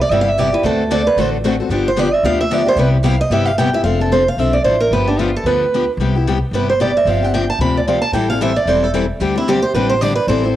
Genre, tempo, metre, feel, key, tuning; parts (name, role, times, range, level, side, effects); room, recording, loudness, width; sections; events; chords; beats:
acoustic string swing (jazz manouche); 224 BPM; 4/4; swing 57% on 8ths; C major; A4 = 440 Hz
picked steel-string acoustic guitar; melody; 0.0-10.5 s; D4 to B5; -16 LUFS; right 3 dB; cassette tape
picked steel-string acoustic guitar; accompaniment; 0.1-10.6 s; C3 to A4; -19 LUFS; left 6 dB; cassette tape
picked steel-string acoustic guitar; accompaniment; 0.1-3.7, 8.1-10.5 s; C3 to A4; -26 LUFS; right 6 dB; cassette tape
upright bass; bass; 0.1-10.6 s; E1 to D2; -20 LUFS; equal
moderate spring reverb, RT60 1.6 s, small room reverb; home recording on cassette, faint mains hum; -13 LUFS; side -12 dB against mid
0.0-3.8 A section; 3.8-10.6 A section
steel-string acoustic guitar solo 0.0-10.6
0.0 Cmaj7; 0.6 D7; 1.7 G7; 2.8 Cmaj7; 3.8 F6; 4.9 G7; 6.0 Cmaj7; 7.1 G7sus4; 8.1 Am7; 9.2 D7sus4
0.11 0.38 | 0.64 0.91 1.18 1.44 | 1.71 1.98 2.24 2.51 | 2.78 3.05 3.31 3.58 | 3.85 4.12 4.38 4.65 | 4.92 5.19 5.46 5.72 | 5.99 6.26 6.53 6.80 | 7.07 7.33 7.60 7.87 | 8.14 8.41 8.68 8.94 | 9.21 9.48 9.75 10.02 | 10.28 10.55